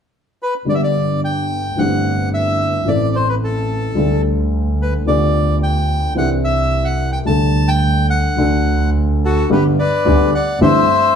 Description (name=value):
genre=tango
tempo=109 BPM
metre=4/4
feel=rubato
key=G major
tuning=A4 = 440 Hz
part: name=bandoneon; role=melody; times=0.4-11.2 s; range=F#4 to A5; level=-19 LUFS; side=left 1 dB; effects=none
part: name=warm baby grand piano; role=accompaniment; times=0.7-10.8 s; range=G1 to A4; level=-17 LUFS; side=left 1 dB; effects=none
part: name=dark double bass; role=bass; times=0.7-10.8 s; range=G1 to D2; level=-19 LUFS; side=right 1 dB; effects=none
room=wet studio reverb, RT60 0.9 s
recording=band playing live in one room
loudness=-14 LUFS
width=side -7 dB against mid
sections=0.7-9.5 A section; 9.5-11.2 B section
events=none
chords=0.0 N.C.; 0.7 G; 1.8 C6/G; 2.9 Am; 4.0 Dsus4; 5.1 G7/D; 6.2 Cadd9; 7.3 Dsus4; 8.4 D; 9.5 G; 10.6 C6/G